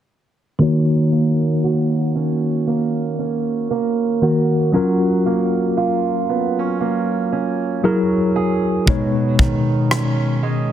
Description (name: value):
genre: contemporary R&B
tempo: 58 BPM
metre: 4/4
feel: swing 58% on 16ths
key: unclear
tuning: A4 = 440 Hz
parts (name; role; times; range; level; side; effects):
- mellow tine electric piano; accompaniment; 0.6-10.7 s; B2 to C#5; -18 LUFS; left 2 dB; medium stereo tremolo, low-pass filter
- fingerpicked acoustic archtop guitar; arpeggios; 0.6-10.7 s; B2 to G#4; -21 LUFS; right 6 dB; low-pass filter, tape echo
- modern studio drum kit; drums; 8.9-10.2 s; kick drum, rim click; -19 LUFS; equal; none
room: light reverb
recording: dense, heavily limited modern master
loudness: -16 LUFS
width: side -10 dB against mid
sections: 0.6-10.7 A section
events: filter sweep 0.6-10.7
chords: 0.6 D#m7; 4.7 F#maj7; 7.8 F#9; 8.9 B69